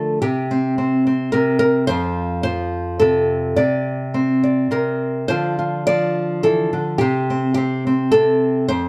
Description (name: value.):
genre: folk, solo fingerstyle acoustic guitar.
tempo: 107 BPM.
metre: 3/4.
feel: rubato.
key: unclear.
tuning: A4 = 440 Hz.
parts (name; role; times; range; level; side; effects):
nylon-string guitar; solo; 0.0-8.9 s; F2 to D5; -19 LUFS; equal; none.
room: light reverb.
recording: dark, warm production.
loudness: -19 LUFS.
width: mono.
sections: 0.0-8.9 A section.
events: none.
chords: 0.2 N.C.; 1.9 F; 3.6 Csus2; 5.3 Dm; 7.0 N.C..